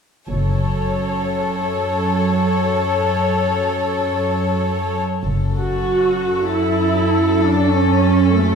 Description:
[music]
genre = cinematic, suspense film score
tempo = free time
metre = none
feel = none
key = F# minor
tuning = A4 = 440 Hz
[part]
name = warm chamber violin section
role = second line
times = 0.3-5.0 s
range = A4 to C#5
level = -20 LUFS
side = left 4 dB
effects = none
[part]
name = rich symphonic double bass section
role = bass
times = 0.3-0.9, 5.3-5.8 s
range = F#1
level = -21 LUFS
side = left 1 dB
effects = none
[part]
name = warm symphonic cello section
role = bass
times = 0.3-8.6 s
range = F#2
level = -21 LUFS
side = right 2 dB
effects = none
[part]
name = warm symphonic violin section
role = melody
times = 5.3-8.6 s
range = A4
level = -23 LUFS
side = left 7 dB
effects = none
[part]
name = dark symphonic viola section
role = accompaniment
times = 5.6-8.6 s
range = A3 to F#4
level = -16 LUFS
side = right 3 dB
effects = none
[sound]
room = wet recital hall reverb, RT60 1.5 s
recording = heard from further back in the room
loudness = -16 LUFS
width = side -6 dB against mid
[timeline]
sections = 0.3-5.3 A section; 5.3-8.6 B section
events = none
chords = 0.3 F#m

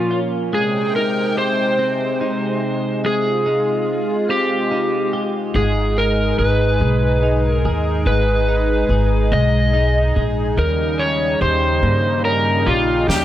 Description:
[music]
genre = six-eight pop ballad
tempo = 48 BPM (dotted quarters)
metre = 6/8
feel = straight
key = Ab major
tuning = A4 = 441 Hz
[part]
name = overdriven slide guitar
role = melody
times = 0.0-13.2 s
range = F4 to Eb5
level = -20 LUFS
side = equal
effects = none
[part]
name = twelve-string electric guitar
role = accompaniment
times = 0.0-13.2 s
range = Ab2 to Ab4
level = -23 LUFS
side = left 1 dB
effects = none
[part]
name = lush unison pad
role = sustained chords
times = 0.0-13.2 s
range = Bb2 to G5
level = -23 LUFS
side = equal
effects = chorus
[part]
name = upright bass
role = bass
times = 5.5-13.2 s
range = Ab1 to G2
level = -19 LUFS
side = equal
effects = none
[part]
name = snare drum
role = drums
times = 13.1-13.2 s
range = none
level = -19 LUFS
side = left 1 dB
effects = none
[sound]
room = studio ambience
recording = none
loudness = -16 LUFS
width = side -12 dB against mid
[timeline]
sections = 0.0-13.2 A section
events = drum fill 13.1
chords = 0.0 Bbm; 0.5 Abmaj7; 5.6 Abm; 10.6 Eb7

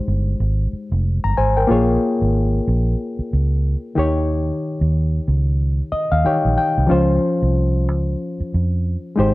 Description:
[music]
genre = lush 1970s-style soul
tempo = 92 BPM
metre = 4/4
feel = swing 58% on 16ths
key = unclear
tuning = A4 = 440 Hz
[part]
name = reed electric piano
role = accompaniment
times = 0.0-9.3 s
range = Eb3 to Bb5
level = -20 LUFS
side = left 2 dB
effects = spring reverb
[part]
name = vintage muted fingered electric bass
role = bass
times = 0.1-9.3 s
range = F1 to F2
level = -18 LUFS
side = right 1 dB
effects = none
[sound]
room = little or no reverb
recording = dry, close 1970s-style studio recording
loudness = -16 LUFS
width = side -19 dB against mid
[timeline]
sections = 0.0-9.3 A section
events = reed electric piano fill 5.6-6.9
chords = 0.0 Abmaj7; 1.7 Bbm7; 4.0 Eb7; 6.9 Dbmaj7

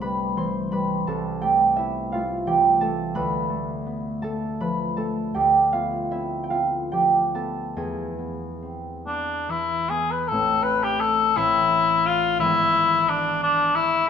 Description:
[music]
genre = classical, romantic duo for cor anglais and harp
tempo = 46-62 BPM (dotted quarters)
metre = 6/8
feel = rubato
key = A minor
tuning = A4 = 440 Hz
[part]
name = concert harp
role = accompaniment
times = 0.0-14.1 s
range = G#1 to C6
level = -23 LUFS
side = right 2 dB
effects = none
[part]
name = mellow cor anglais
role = melody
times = 9.1-14.1 s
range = D4 to B4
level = -19 LUFS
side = left 4 dB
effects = none
[sound]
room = moderate recital hall reverb, RT60 1.6 s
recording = minimal, uncompressed stereo recording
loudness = -20 LUFS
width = side -7 dB against mid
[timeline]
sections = 0.0-10.3 A section; 10.3-14.1 B section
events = none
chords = 0.0 C; 1.1 Am/C; 3.2 Dm; 5.4 Bdim/D; 7.8 E; 10.3 Am; 12.4 E7/G#

